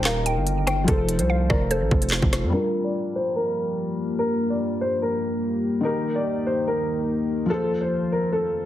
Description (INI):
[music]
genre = hip hop, drill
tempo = 145 BPM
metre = 4/4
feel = half-time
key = G minor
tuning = A4 = 438 Hz
[part]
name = mallet-like synth pluck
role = second line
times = 0.0-2.1 s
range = C5 to G5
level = -29 LUFS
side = equal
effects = chorus, digital delay
[part]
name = felt-muted upright piano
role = accompaniment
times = 0.0-8.7 s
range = Eb3 to C5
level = -29 LUFS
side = left 2 dB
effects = low-pass filter
[part]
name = deep dark ambient pad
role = sustained chords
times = 0.0-8.7 s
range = Eb2 to Bb4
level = -28 LUFS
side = left 1 dB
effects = chorus, built-in reverb, low-pass filter
[part]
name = distorted 808-style bass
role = bass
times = 0.0-2.5 s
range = Eb1 to F2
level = -24 LUFS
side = right 1 dB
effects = distortion
[part]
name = drill drum kit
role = drums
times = 0.0-2.4 s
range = handclaps, hi-hat, kick drum, rim click, snare drum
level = -23 LUFS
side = equal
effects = none
[part]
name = dark grand piano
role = melody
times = 0.1-8.7 s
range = A4 to D5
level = -26 LUFS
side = equal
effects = low-pass filter, digital delay
[sound]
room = light reverb, digital ambience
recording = heavily compressed radio sound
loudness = -21 LUFS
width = side -12 dB against mid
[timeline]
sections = 0.0-2.5 A section; 2.5-8.7 B section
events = filter sweep 2.5-8.7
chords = 0.0 Eb; 0.9 F; 2.5 Gm7; 5.8 Eb; 7.5 F